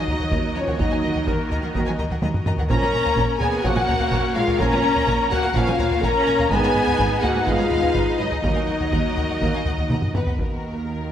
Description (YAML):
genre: cinematic, epic orchestral film score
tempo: 126 BPM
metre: 4/4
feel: straight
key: Eb minor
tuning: A4 = 441 Hz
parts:
  - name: rich symphonic violin section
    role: melody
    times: 0.0-11.1 s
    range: Bb4 to Bb5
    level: -27 LUFS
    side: left 3 dB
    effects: none
  - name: flute section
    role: second line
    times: 0.0-10.1 s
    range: Bb4 to Bb5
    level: -28 LUFS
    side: left 3 dB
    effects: none
  - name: rich symphonic violin section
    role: second line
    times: 0.0-11.1 s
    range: Bb4 to Cb6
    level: -33 LUFS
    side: left 3 dB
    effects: none
  - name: rich symphonic viola section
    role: accompaniment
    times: 0.0-11.1 s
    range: Eb3 to Bb4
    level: -28 LUFS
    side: right 1 dB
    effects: none
  - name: dark French horn section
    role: sustained chords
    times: 0.0-11.1 s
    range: Bb3 to Bb4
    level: -26 LUFS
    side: left 3 dB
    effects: none
  - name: rich symphonic string section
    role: sustained chords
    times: 0.0-10.4 s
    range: Bb3 to Eb5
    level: -30 LUFS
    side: right 2 dB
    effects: none
  - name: warm symphonic cello section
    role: bass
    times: 0.1-11.1 s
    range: Eb2 to Eb3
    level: -30 LUFS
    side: right 2 dB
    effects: none
  - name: warm symphonic double bass section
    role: bass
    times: 0.1-11.1 s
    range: Ab1 to Eb2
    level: -29 LUFS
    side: right 3 dB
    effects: none
  - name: solo taiko drums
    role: drums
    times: 0.1-10.8 s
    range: none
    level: -25 LUFS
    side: equal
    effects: none
  - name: warm trombone section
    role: sustained chords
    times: 0.8-11.1 s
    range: Eb3 to Eb4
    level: -33 LUFS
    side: right 3 dB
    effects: none
room: moderate scoring stage reverb, RT60 1.7 s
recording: none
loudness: -18 LUFS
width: side -10 dB against mid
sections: 0.0-10.4 A section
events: drum fill 2.2-2.7, 9.9-10.4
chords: 0.0 Ebm; 2.7 Bbm; 6.5 Abm; 8.4 Ebm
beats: 0.32 | 0.79 1.27 1.74 2.22 | 2.70 3.17 3.64 4.12 | 4.60 5.08 5.56 6.03 | 6.51 6.99 7.47 7.95 | 8.43 8.92 9.41 9.90 | 10.38 10.87